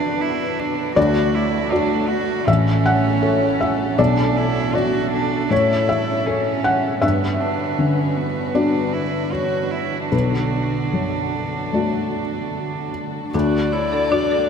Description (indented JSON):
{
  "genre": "neoclassical piano and strings",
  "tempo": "74-81 BPM",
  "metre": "4/4",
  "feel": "rubato",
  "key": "B minor",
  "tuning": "A4 = 442 Hz",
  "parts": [
    { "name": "rich cello", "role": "second line", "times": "0.0-12.9 s", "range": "B3 to F#4", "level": "-24 LUFS", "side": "right 5 dB", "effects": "none" },
    { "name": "felt-muted upright piano", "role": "accompaniment", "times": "0.0-14.5 s", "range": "A1 to F#5", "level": "-19 LUFS", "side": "left 2 dB", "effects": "none" },
    { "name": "dark chamber string section", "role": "sustained chords", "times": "0.0-14.5 s", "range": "D3 to B4", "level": "-28 LUFS", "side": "right 1 dB", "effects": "none" },
    { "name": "dark violin", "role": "melody", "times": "13.3-14.5 s", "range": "D5", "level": "-21 LUFS", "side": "left 7 dB", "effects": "none" },
    { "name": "warm viola", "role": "accompaniment", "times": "13.3-14.5 s", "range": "D4 to F#4", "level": "-26 LUFS", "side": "right 3 dB", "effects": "none" },
    { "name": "buzzing marimba with hard mallets", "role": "arpeggios", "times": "13.3-14.4 s", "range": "D4 to C#5", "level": "-26 LUFS", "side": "right 2 dB", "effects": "slapback echo" }
  ],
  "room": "wet huge ambient reverb, RT60 8.1 s",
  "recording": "in a vast, echoing space",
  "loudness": "-17 LUFS",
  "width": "side -6 dB against mid",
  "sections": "0.0-13.3 A section; 13.3-14.5 A section",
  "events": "none",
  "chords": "0.0 Bm7; 1.0 D; 2.5 A; 4.0 Bm7; 5.5 A; 7.0 Gmaj7; 10.1 Bm7; 13.3 D"
}